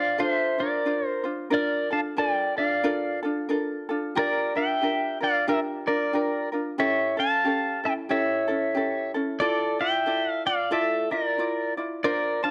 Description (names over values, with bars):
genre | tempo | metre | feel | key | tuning
Hawaiian | 91 BPM | 4/4 | swing 60% on 8ths | D minor | A4 = 440 Hz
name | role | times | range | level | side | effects
pedal steel guitar | melody | 0.0-12.5 s | A4 to A5 | -27 LUFS | equal | none
ukulele | accompaniment | 0.0-12.5 s | C#4 to D5 | -30 LUFS | equal | none
room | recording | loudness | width
light reverb, small room reverb | none | -26 LUFS | mono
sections
0.0-12.5 A section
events
none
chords
0.0 Dm7; 1.5 Bbmaj7; 4.2 Gm7; 6.8 A7; 9.4 Dmadd9